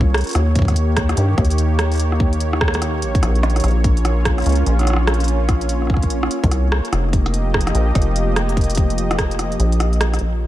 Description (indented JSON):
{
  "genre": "IDM",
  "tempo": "146 BPM",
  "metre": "4/4",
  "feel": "swing 62% on 16ths",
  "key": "unclear",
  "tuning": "A4 = 439 Hz",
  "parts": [
    { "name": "warm analog pad", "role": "sustained chords", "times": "0.0-10.5 s", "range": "Db3 to Eb5", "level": "-23 LUFS", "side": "right 1 dB", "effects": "chorus" },
    { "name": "deep acid bass", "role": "bass", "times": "0.0-10.5 s", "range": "F1 to G2", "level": "-18 LUFS", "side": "equal", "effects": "none" },
    { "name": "electronic kick drum", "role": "drums", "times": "0.0-9.3 s", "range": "none", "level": "-18 LUFS", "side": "equal", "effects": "none" },
    { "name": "organic electronic drum kit", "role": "drums", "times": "0.1-10.2 s", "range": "hi-hat, rim click", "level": "-24 LUFS", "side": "right 1 dB", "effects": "ping-pong delay" }
  ],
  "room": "little or no reverb",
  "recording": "none",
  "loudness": "-15 LUFS",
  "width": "side -14 dB against mid",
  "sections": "0.0-10.2 A section",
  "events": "kick drops out 9.4-10.2",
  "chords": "0.3 Eb7; 3.6 Bbm; 6.9 F9sus4"
}